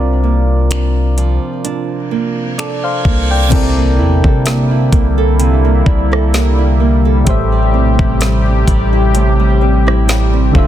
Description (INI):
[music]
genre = contemporary R&B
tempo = 64 BPM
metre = 4/4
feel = swing 54% on 16ths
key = unclear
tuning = A4 = 438 Hz
[part]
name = soft electric-piano-like synth keys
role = accompaniment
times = 0.0-10.7 s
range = A2 to G5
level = -19 LUFS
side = left 2 dB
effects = chorus
[part]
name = nylon-string guitar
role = arpeggios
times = 0.0-10.7 s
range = A2 to A4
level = -20 LUFS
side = right 8 dB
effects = ping-pong delay
[part]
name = long sustained 808-style bass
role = bass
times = 0.0-10.7 s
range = D1 to C3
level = -13 LUFS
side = equal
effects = none
[part]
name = smooth R&B drum kit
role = drums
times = 0.7-10.7 s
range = crash cymbal, finger snaps, hi-hat, kick drum, rim click, snare drum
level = -15 LUFS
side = equal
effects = soft clipping on snare
[part]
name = reverse cymbal and impact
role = sound effects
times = 2.1-7.3 s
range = none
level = -26 LUFS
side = right 1 dB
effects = none
[part]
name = warm analog pad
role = sustained chords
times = 3.5-10.7 s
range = C3 to G4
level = -18 LUFS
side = left 1 dB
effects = chorus
[part]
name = soft synth bell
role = texture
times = 4.5-10.7 s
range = C5 to E5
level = -33 LUFS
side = left 3 dB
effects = none
[sound]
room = digital ambience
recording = dense, heavily limited modern master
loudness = -10 LUFS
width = side -11 dB against mid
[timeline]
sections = 0.0-3.5 A section; 3.5-10.7 B section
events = reverse cymbal 2.1-3.5; impact 3.5-7.3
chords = 0.0 C9sus4; 3.5 C13; 7.3 Am7